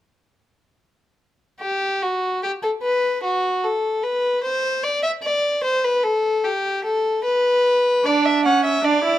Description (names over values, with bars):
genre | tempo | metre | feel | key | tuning
classical, baroque-style fugue for string quartet | 75 BPM | 4/4 | straight | unclear | A4 = 440 Hz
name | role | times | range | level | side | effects
warm violin | second line | 1.6-9.2 s | F#4 to F#5 | -19 LUFS | left 1 dB | none
warm viola | accompaniment | 8.0-9.2 s | C#4 to E4 | -18 LUFS | right 5 dB | none
room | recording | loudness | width
light reverb | close, detailed microphones | -18 LUFS | side -13 dB against mid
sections
1.6-9.2 A section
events
none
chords
none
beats
| 1.62 2.43 3.24 4.04 | 4.85 5.65 6.45 7.25 | 8.05 8.85